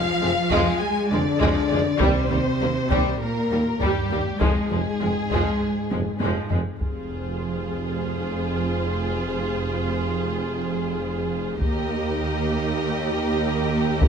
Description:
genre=cinematic, epic orchestral film score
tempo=100 BPM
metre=4/4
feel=straight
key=F dorian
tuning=A4 = 439 Hz
part: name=warm symphonic violin section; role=melody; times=0.0-14.1 s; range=G4 to Ab5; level=-30 LUFS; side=left 3 dB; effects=none
part: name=mellow French horn section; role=sustained chords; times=0.0-14.1 s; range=G3 to Ab4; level=-28 LUFS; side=left 5 dB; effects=none
part: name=mellow tuba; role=bass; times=0.0-6.6 s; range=F1 to Eb2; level=-32 LUFS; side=right 5 dB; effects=none
part: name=warm symphonic cello section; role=bass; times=0.0-14.1 s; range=Eb2 to Ab3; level=-29 LUFS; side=right 4 dB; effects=none
part: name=warm symphonic violin section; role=second line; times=0.2-14.1 s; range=G3 to Bb4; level=-30 LUFS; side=left 2 dB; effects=none
part: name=rich studio viola section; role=accompaniment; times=0.2-14.1 s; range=F3 to G4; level=-30 LUFS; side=right 2 dB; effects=none
part: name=rich symphonic double bass section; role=bass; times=0.2-14.1 s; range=F1 to F2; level=-28 LUFS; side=right 4 dB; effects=none
part: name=taiko ensemble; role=drums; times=0.5-8.0, 11.6-14.1 s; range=none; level=-25 LUFS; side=equal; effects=none
room=moderate concert hall reverb, RT60 2.0 s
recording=close, detailed microphones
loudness=-21 LUFS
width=side -7 dB against mid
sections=0.0-6.8 A section; 6.8-14.1 B section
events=drum fill 5.9-6.8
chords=0.0 Fm; 2.0 Eb; 4.4 Fm; 11.6 Eb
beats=0.21 0.81 1.41 | 2.01 2.61 3.21 3.81 | 4.41 5.01 5.61 6.21 | 6.81 7.41 8.01 8.61 | 9.21 9.81 10.41 11.01 | 11.61 12.21 12.81 13.41 | 14.01

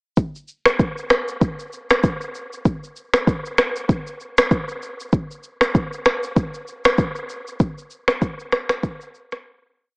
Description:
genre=afrobeats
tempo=97 BPM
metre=4/4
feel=swing 58% on 16ths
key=none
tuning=none
part: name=afro-pop drum kit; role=drums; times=0.2-9.4 s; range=finger snaps, kick drum, rim click, shaker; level=-18 LUFS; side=equal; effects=cassette tape
room=wet spring reverb, RT60 2.7 s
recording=home recording on cassette, small speaker sound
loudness=-18 LUFS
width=side -33 dB against mid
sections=0.2-10.0 verse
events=fade-out 7.6-10.0; break 9.5-10.0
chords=none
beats=| 0.18 0.80 1.41 2.03 | 2.65 3.27 3.89 4.51 | 5.13 5.74 6.36 6.98 | 7.60 8.22 8.84

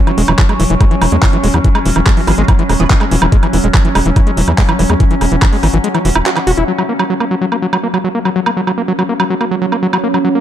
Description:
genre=psychedelic trance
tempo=143 BPM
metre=4/4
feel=straight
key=unclear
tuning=A4 = 440 Hz
part: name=overtone-sweeping drone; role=sustained chords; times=0.0-10.4 s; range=F#3 to C#4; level=-18 LUFS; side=equal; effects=chorus, built-in reverb, sidechain pumping
part: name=overdriven acid bass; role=riff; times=0.1-10.4 s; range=E3 to F#4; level=-16 LUFS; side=equal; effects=auto-pan, sidechain pumping, dub echo
part: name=garage drum kit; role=drums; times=0.1-10.2 s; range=handclaps, hi-hat, woodblock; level=-19 LUFS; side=right 2 dB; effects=none
part: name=tight sequencer bass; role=bass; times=0.2-6.6 s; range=E1 to E2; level=-14 LUFS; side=equal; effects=none
part: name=electronic kick drum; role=drums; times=0.4-5.5 s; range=none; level=-10 LUFS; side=equal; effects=none
part: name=metallic wobble bass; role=second line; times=2.3-3.0 s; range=G#3 to B3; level=-27 LUFS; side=right 4 dB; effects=none
room=light reverb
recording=dark, warm production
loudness=-10 LUFS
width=side -11 dB against mid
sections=0.0-6.7 A section; 6.7-10.4 B section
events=drop 0.0-6.7; kick drops out 5.8-6.7; filter sweep on synth drone 6.7-10.4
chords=0.0 E69; 6.7 F#5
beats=0.39 0.81 1.23 | 1.65 2.06 2.48 2.90 | 3.32 3.74 4.16 4.58 | 5.00 5.42 5.84 6.26 | 6.68 7.10 7.52 7.94 | 8.36 8.78 9.20 9.62 | 10.04

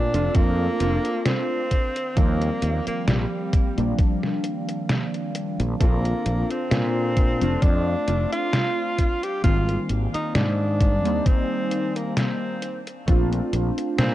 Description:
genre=vaporwave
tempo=66 BPM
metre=4/4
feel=swing 55% on 16ths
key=Bb major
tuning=A4 = 439 Hz
part: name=warm tenor saxophone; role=melody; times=0.0-14.1 s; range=G3 to G4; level=-27 LUFS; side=equal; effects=tape echo
part: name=warbly lo-fi synth keys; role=accompaniment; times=0.0-14.1 s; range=Eb3 to A4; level=-28 LUFS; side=equal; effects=lush chorus, analog delay
part: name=warbly tape-like pad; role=sustained chords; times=0.0-14.1 s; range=Eb3 to A5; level=-35 LUFS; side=left 1 dB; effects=chorus, built-in reverb
part: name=fretless electric bass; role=bass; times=0.0-14.1 s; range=F1 to Bb2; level=-24 LUFS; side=equal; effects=none
part: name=detuned 8-bit digital drum machine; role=drums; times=0.1-14.1 s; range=hi-hat, snare drum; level=-26 LUFS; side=equal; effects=none
part: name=electronic kick drum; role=drums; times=0.3-13.3 s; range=none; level=-20 LUFS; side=equal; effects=none
room=little or no reverb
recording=dark, warm production, cassette tape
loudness=-20 LUFS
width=side -14 dB against mid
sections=0.0-14.1 A section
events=none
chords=0.0 Bbmaj9; 1.7 Ebmaj7; 5.8 Bbmaj9; 9.0 Abmaj9; 12.6 Bbmaj9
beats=0.35 1.26 | 2.17 3.08 3.99 4.89 | 5.80 6.71 7.62 8.53 | 9.44 10.35 11.26 12.17 | 13.08 13.99

